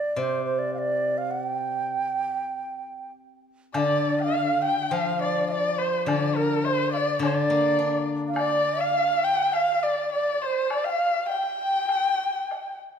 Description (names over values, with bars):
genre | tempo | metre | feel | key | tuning
chinese traditional, Chinese chamber ensemble | 102 BPM | 4/4 | rubato | unclear | A4 = 439 Hz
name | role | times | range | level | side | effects
bright xiao | melody | 0.0-12.8 s | Bb4 to G5 | -26 LUFS | right 4 dB | none
steel-string zither | accompaniment | 0.2-8.9 s | C3 to D4 | -28 LUFS | left 4 dB | none
woodblock | percussion | 3.7-12.7 s | none | -37 LUFS | left 1 dB | none
warm erhu | second line | 3.8-12.8 s | Bb4 to G5 | -26 LUFS | left 6 dB | none
room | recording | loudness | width
wet recital hall reverb, RT60 1.6 s | minimal, uncompressed stereo recording | -22 LUFS | side -7 dB against mid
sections
0.0-3.7 A section; 3.7-13.0 B section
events
none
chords
none